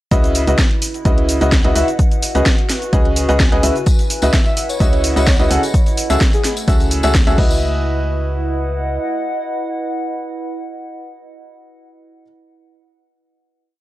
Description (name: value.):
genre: piano house.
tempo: 128 BPM.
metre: 4/4.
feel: swing 53% on 16ths.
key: C# minor.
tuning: A4 = 440 Hz.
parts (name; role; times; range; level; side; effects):
bright baby grand piano; riff; 0.1-12.2 s; C#3 to F#5; -20 LUFS; equal; sidechain pumping, analog delay.
organ-like FM bass; bass; 0.1-9.0 s; C#2; -19 LUFS; equal; sidechain pumping.
electronic kick drum; drums; 0.1-7.5 s; none; -15 LUFS; equal; overdrive, studio reverb.
garage drum kit; drums; 0.1-7.5 s; cabasa, crash cymbal, hi-hat, snare drum; -21 LUFS; equal; overdrive, studio reverb.
warbly tape-like pad; texture; 0.7-12.1 s; A3 to G#5; -25 LUFS; right 1 dB; chorus, built-in reverb, sidechain pumping.
tambourine; percussion; 3.9-7.6 s; none; -29 LUFS; left 4 dB; none.
breathy flute-like synth lead; melody; 4.2-6.5 s; G#4 to E5; -26 LUFS; equal; analog chorus, analog delay.
room: little or no reverb.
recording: dry, gritty hardware recording, cassette tape.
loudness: -13 LUFS.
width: side -16 dB against mid.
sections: 0.1-7.6 drop; 7.6-11.4 final chord.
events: drop 0.1-7.6.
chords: 0.1 C#m11; 2.0 G#m7/C#; 3.6 C#m11; 5.5 F#m9/C#; 7.4 C#m11.